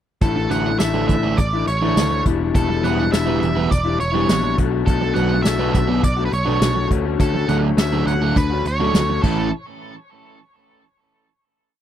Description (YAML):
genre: indie rock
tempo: 103 BPM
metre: 4/4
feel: straight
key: A mixolydian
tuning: A4 = 440 Hz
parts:
  - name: octave-fuzz lead guitar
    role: melody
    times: 0.2-9.5 s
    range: A4 to F#5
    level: -24 LUFS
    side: right 3 dB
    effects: distortion
  - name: electric guitar through a small old amp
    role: riff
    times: 0.2-9.5 s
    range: E2 to F#4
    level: -22 LUFS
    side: left 10 dB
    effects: warbly pitch drift
  - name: picked electric bass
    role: bass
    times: 0.2-9.5 s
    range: E1 to D2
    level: -22 LUFS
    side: equal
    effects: none
  - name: unplugged drum kit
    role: drums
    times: 0.2-9.4 s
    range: crash cymbal, hi-hat, kick drum, snare drum, tambourine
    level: -20 LUFS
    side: equal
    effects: none
  - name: crunchy overdriven guitar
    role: riff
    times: 0.4-9.5 s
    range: A2 to E4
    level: -24 LUFS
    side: right 7 dB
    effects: wide subtle chorus
room: little or no reverb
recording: dry, close 1970s-style studio recording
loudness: -16 LUFS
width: side -10 dB against mid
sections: 0.2-9.5 verse; 9.5-11.8 final hit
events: drum fill 9.2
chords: 0.2 Asus4; 2.3 Em7; 4.6 Bm7; 6.9 Dmaj7; 9.2 A; 9.5 N.C.